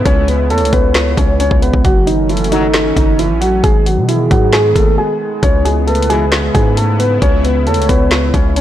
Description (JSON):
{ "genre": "hip hop, trap", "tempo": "134 BPM", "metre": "4/4", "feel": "half-time", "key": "C# minor", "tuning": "A4 = 445 Hz", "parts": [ { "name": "dark baby grand piano", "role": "melody", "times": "0.0-8.6 s", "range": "D#3 to C#5", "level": "-15 LUFS", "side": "right 1 dB", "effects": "digital delay" }, { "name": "sweeping resonant pad", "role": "sustained chords", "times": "0.0-8.6 s", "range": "C#3 to E4", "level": "-22 LUFS", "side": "left 1 dB", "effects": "chorus" }, { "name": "hard-hitting 808-style bass", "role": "bass", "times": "0.0-8.6 s", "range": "F#1 to B2", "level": "-16 LUFS", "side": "equal", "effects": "tube saturation" }, { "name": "trap drum kit", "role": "drums", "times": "0.1-8.6 s", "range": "handclaps, hi-hat, kick drum, snare drum", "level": "-14 LUFS", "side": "equal", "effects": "vintage 12-bit sampler grit" }, { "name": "soft octave-layered synth lead", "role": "second line", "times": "0.5-8.5 s", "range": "G#4 to C#5", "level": "-21 LUFS", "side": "equal", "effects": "chorus, phaser, digital delay" }, { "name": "bright brass ensemble", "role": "stabs", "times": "2.5-2.7, 6.1-6.2 s", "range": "C#2 to F#3", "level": "-24 LUFS", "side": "left 4 dB", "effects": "digital delay" } ], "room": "digital ambience", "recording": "blown-out, overdriven recording, overdrive", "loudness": "-10 LUFS", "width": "side -12 dB against mid", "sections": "0.0-8.6 A section", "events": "break 5.0-5.4", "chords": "0.0 C#m7; 1.8 F#m; 3.6 G#m; 5.4 C#m7" }